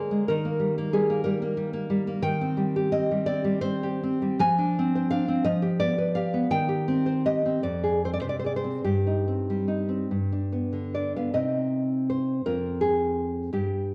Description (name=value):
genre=romantic piece for solo classical guitar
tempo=46-62 BPM (dotted quarters)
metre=6/8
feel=rubato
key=C minor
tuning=A4 = 439 Hz
part: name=nylon-string guitar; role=solo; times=0.0-13.9 s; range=F2 to Ab5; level=-26 LUFS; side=equal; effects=none
room=moderate recital hall reverb, RT60 1.5 s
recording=worn, warbling old tape, cassette tape, warbly pitch drift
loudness=-26 LUFS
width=mono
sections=0.0-11.3 A section; 11.3-13.9 B section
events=none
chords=0.3 Eb; 2.2 Cm/Eb; 4.4 Dm7b5/F; 5.5 G7/F; 6.5 Cm/Eb; 7.6 Fm6; 8.8 Cm/G; 10.1 G; 11.3 Cm; 12.4 Fm